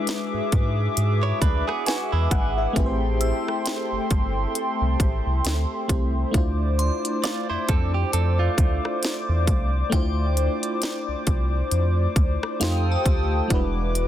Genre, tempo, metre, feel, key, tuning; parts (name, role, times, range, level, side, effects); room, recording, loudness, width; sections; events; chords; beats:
contemporary R&B; 67 BPM; 4/4; swing 58% on 16ths; D minor; A4 = 441 Hz
FM electric piano with soft pad layer; accompaniment; 0.0-14.1 s; G3 to G#5; -28 LUFS; left 2 dB; chorus, tremolo
hollow soft pad; sustained chords; 0.0-14.1 s; G#3 to Eb6; -30 LUFS; left 1 dB; chorus
trap drum kit; drums; 0.1-14.1 s; hi-hat, kick drum, rim click, snare drum; -23 LUFS; equal
round analog bass; bass; 0.3-14.1 s; E1 to G#2; -23 LUFS; equal
direct-recorded clean electric guitar; arpeggios; 1.2-9.7 s; G#3 to D5; -29 LUFS; right 8 dB; tape echo
glassy synth bell; texture; 3.2-14.1 s; F5 to E6; -37 LUFS; right 1 dB; chorus, phaser, tape echo
little or no reverb; dense, heavily limited modern master; -20 LUFS; side -11 dB against mid
0.0-14.1 A section
0.0 E7; 2.8 Am7; 6.3 Dm7; 12.6 F9; 13.5 E7
0.07 0.97 1.86 | 2.76 3.65 4.55 5.45 | 6.34 7.24 8.13 9.03 | 9.92 10.82 11.71 12.61 | 13.51